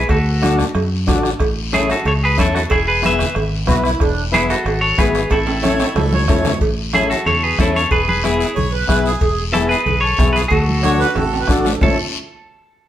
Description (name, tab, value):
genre	latin, cumbia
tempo	184 BPM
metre	4/4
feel	straight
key	A major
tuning	A4 = 440 Hz
part	clean electric guitar	melody	0.0-12.0 s	E4 to E5	-18 LUFS	equal	spring reverb
part	fingered electric bass	bass	0.0-12.0 s	E1 to F#2	-21 LUFS	equal	none
part	bombo	percussion	0.1-11.9 s	none	-21 LUFS	equal	none
part	cowbell and timbales	percussion	0.1-11.9 s	none	-24 LUFS	right 3 dB	none
part	guiro	percussion	0.1-11.9 s	none	-29 LUFS	left 5 dB	none
part	overdriven combo organ	accompaniment	0.4-12.0 s	B3 to B4	-20 LUFS	left 3 dB	none
part	congas	percussion	0.4-11.9 s	none	-25 LUFS	equal	none
part	accordion	second line	3.7-12.0 s	D4 to C#5	-22 LUFS	right 4 dB	none
room	moderate studio reverb, RT60 0.8 s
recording	band playing live in one room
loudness	-14 LUFS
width	side -12 dB against mid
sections	0.0-6.6 A section; 6.6-11.8 B section; 11.8-12.9 C section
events	drum fill 5.3-6.6, 11.2-11.8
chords	0.1 D; 1.4 A; 2.7 E; 5.3 A; 7.9 E; 10.5 D; 11.8 A